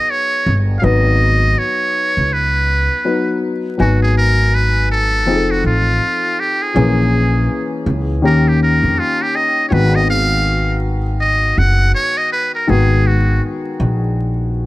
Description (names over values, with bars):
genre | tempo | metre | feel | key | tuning
hip hop, jazz-hop | 81 BPM | 4/4 | swing 60% on 16ths | G# dorian | A4 = 440 Hz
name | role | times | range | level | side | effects
trumpet with metal mute | melody | 0.0-13.4 s | E#4 to F#5 | -17 LUFS | right 1 dB | none
dark upright piano | accompaniment | 0.0-14.7 s | D#3 to G#5 | -20 LUFS | left 3 dB | none
upright bass | bass | 0.5-14.7 s | F1 to E#2 | -15 LUFS | equal | none
room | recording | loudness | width
little or no reverb | vinyl crackle | -13 LUFS | side -17 dB against mid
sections
0.0-3.8 A section; 3.8-14.7 B section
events
muted trumpet solo 3.8-14.7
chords
0.0 G#m7; 5.3 F7; 6.8 A#m7b5; 8.2 D#7; 9.7 G#m7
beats
0.09 | 0.83 1.57 2.31 3.05 | 3.79 4.53 5.27 6.01 | 6.75 7.50 8.24 8.98 | 9.72 10.46 11.20 11.94 | 12.68 13.42 14.16